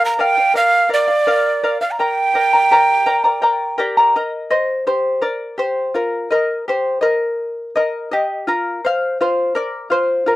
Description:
andean folk, Andean ensemble; 84 BPM; 3/4; straight; A4 = 440 Hz
breathy mellow quena; melody; 0.0-3.8 s; D5 to Bb5; -15 LUFS; right 3 dB
charango; accompaniment; 0.0-10.4 s; F4 to Bb5; -17 LUFS; left 1 dB
moderate booth ambience, RT60 0.2 s; dry, close 1970s-style studio recording; -15 LUFS; side -16 dB against mid
0.0-4.1 A section; 4.1-10.4 B section
charango solo 4.1-10.4
0.0 Bb; 2.0 Gm; 4.1 Eb; 8.5 Bb5

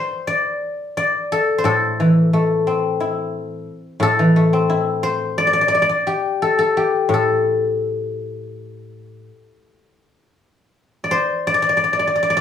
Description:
chinese traditional, Chinese solo plucked strings; 76-90 BPM; 4/4; rubato; A yu mode; A4 = 440 Hz
guzheng; solo; 0.0-12.4 s; A2 to D6; -16 LUFS; left 2 dB
moderate studio reverb, RT60 0.7 s; band playing live in one room, studio reverb; -16 LUFS; side -9 dB against mid
0.0-10.0 A section; 10.0-12.4 B section

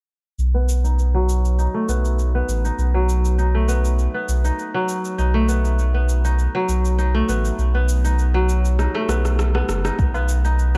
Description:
organic downtempo; 100 BPM; 4/4; swing 53% on 16ths; B mixolydian; A4 = 441 Hz
warm sub bass; bass; 0.4-10.8 s; F#1 to B1; -20 LUFS; equal; sidechain pumping
electronic cabasa and rim click; drums; 0.4-10.8 s; -33 LUFS; equal; overdrive
kora; arpeggios; 0.5-10.8 s; F#3 to D#4; -26 LUFS; equal; low-pass filter, digital delay
electronic kick drum; drums; 10.0-10.1 s; -22 LUFS; equal; overdrive
tabla; percussion; 10.1-10.3 s; -38 LUFS; equal
little or no reverb; dark, warm production; -20 LUFS; mono
0.4-10.0 A section
filter sweep on kora 0.4-10.0; drum fill 8.8-10.0
0.4 B7

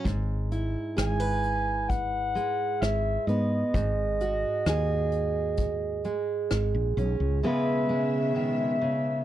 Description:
acoustic folk-pop ballad; 65 BPM; 4/4; straight; C# minor; A4 = 437 Hz
fingerpicked steel-string acoustic guitar; accompaniment; 0.0-9.2 s; G#2 to B4; -29 LUFS; right 2 dB
woody fretless electric bass; bass; 0.1-7.4 s; G#1 to G#2; -29 LUFS; equal
soft brush drum kit; drums; 0.1-7.2 s; hi-hat, kick drum, rim click; -32 LUFS; left 1 dB
dark clarinet; melody; 1.0-9.2 s; D#5 to G#5; -30 LUFS; equal
warm chamber string section; sustained chords; 7.4-9.2 s; B2 to E5; -33 LUFS; left 1 dB
little or no reverb; -25 LUFS; side -12 dB against mid
0.0-7.4 A section; 7.4-9.2 B section
0.1 Eadd9/G#; 3.7 G#7sus4; 7.4 C#m7

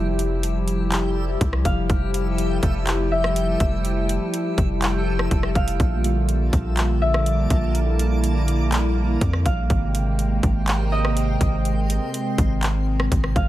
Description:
hip hop, atmospheric cloud-rap; 123 BPM; 4/4; half-time; A4 = 440 Hz
concert harp; melody; 0.0-13.5 s; Eb5 to F5; -30 LUFS; equal; tape echo
hollow soft pad; sustained chords; 0.0-13.5 s; C3 to G5; -26 LUFS; equal; chorus, sidechain pumping
long sustained 808-style bass; bass; 0.0-13.5 s; F1 to F2; -22 LUFS; equal
backwards swelling texture; texture; 0.0-13.5 s; A3 to E5; -33 LUFS; right 1 dB; built-in reverb
trap drum kit; drums; 0.2-13.5 s; handclaps, hi-hat, kick drum, rim click; -24 LUFS; equal
little or no reverb; -19 LUFS; side -14 dB against mid
0.0-13.5 A section
0.0 Fmaj9; 5.8 Bbmaj7; 9.7 Abmaj9

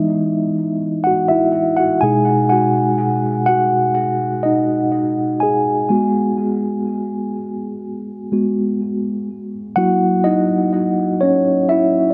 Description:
R&B; 62 BPM; 4/4; straight; G# minor; A4 = 440 Hz
mellow tine electric piano; solo; 0.0-12.1 s; B2 to G#5; -18 LUFS; equal; tape echo
light reverb, digital ambience; echo-heavy mix; -17 LUFS; mono
0.0-12.1 A section
tine electric piano solo 0.0-12.1
0.0 Emaj7; 2.0 B6; 5.9 G#m7; 9.3 F#6

